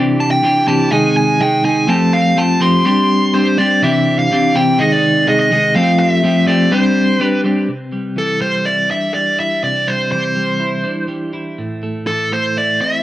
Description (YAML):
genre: rock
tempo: 124 BPM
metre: 4/4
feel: straight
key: C major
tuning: A4 = 440 Hz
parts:
  - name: twelve-string electric guitar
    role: riff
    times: 0.0-13.0 s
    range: A2 to Ab4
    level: -15 LUFS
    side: equal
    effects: harmonic tremolo
  - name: dark smooth lead guitar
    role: melody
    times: 0.2-13.0 s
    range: A4 to C6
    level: -16 LUFS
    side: right 1 dB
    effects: overdrive, cassette tape
room: light reverb, digital ambience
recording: home recording on cassette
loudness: -12 LUFS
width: side -14 dB against mid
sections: 0.0-7.7 A section; 7.7-13.0 B section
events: none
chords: 0.0 Cadd9; 0.9 Ab/C; 1.9 Fadd9; 2.9 Gsus4; 3.8 Cadd9; 4.8 Ab/C; 5.8 Fadd9; 6.7 Gsus4; 7.7 Cadd9; 11.6 Am